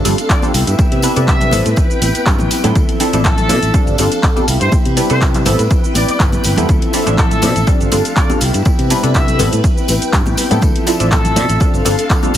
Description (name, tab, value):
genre	filtered disco house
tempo	122 BPM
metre	4/4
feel	swing 54% on 16ths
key	D dorian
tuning	A4 = 439 Hz
part	funky polysynth comp	accompaniment	0.0-12.3 s	F3 to B4	-19 LUFS	equal	chorus, phaser, sidechain pumping
part	string machine, full ensemble	sustained chords	0.0-12.4 s	F3 to G5	-23 LUFS	equal	ensemble chorus, vintage 12-bit sampler grit, sidechain pumping
part	mellow electric guitar	riff	0.0-12.4 s	F3 to B4	-22 LUFS	left 1 dB	sidechain pumping
part	congas and tambourine	percussion	0.0-12.4 s	none	-25 LUFS	left 2 dB	sidechain pumping on perc
part	fingered electric bass	bass	0.1-12.4 s	G1 to C3	-17 LUFS	equal	sidechain pumping
part	house drum kit	drums	0.1-12.4 s	handclaps, hi-hat, shaker	-20 LUFS	equal	sidechain pumping on perc, studio reverb, sidechain pumping on hats, sidechain pumping on cymbals
part	clear horn section	melody	0.3-11.7 s	A4 to E5	-22 LUFS	equal	sidechain pumping, digital delay
part	electronic kick drum	drums	0.3-12.2 s	none	-14 LUFS	equal	overdrive, studio reverb
room	little or no reverb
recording	heavily compressed radio sound, multiband compression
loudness	-11 LUFS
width	side -11 dB against mid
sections	0.0-12.4 A section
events	none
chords	0.0 G9sus4; 0.5 Cmaj7; 1.5 Am9; 2.8 Dm9; 3.7 G9sus4; 4.5 Cmaj7; 5.5 Am9; 6.7 Dm9; 7.7 G9sus4; 8.4 Cmaj7; 9.4 Am9; 10.6 Dm9; 11.6 G9sus4